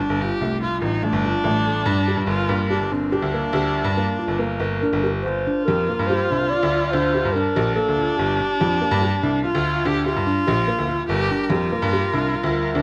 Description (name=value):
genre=contemporary instrumental, chamber music in an uneven meter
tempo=144 BPM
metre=7/4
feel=straight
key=G minor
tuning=A4 = 436 Hz
part: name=warm viola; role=second line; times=0.0-12.8 s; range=Bb3 to G4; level=-27 LUFS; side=equal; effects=none
part: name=clear woodwind section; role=sustained chords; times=0.0-5.2, 11.1-12.8 s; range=G3 to Bb4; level=-34 LUFS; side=equal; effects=none
part: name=felt-muted upright piano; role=arpeggios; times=0.0-12.8 s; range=A3 to Bb4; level=-27 LUFS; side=equal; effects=none
part: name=bright grand piano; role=bass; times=0.1-12.8 s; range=G1 to G2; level=-26 LUFS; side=equal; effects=none
part: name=breathy clarinet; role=melody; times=4.8-9.2 s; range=F4 to D5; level=-26 LUFS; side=equal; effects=none
room=light reverb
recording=close, detailed microphones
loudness=-21 LUFS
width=mono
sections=0.0-5.2 A section; 5.2-12.8 B section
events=none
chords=0.0 Dm/G; 2.3 Gm7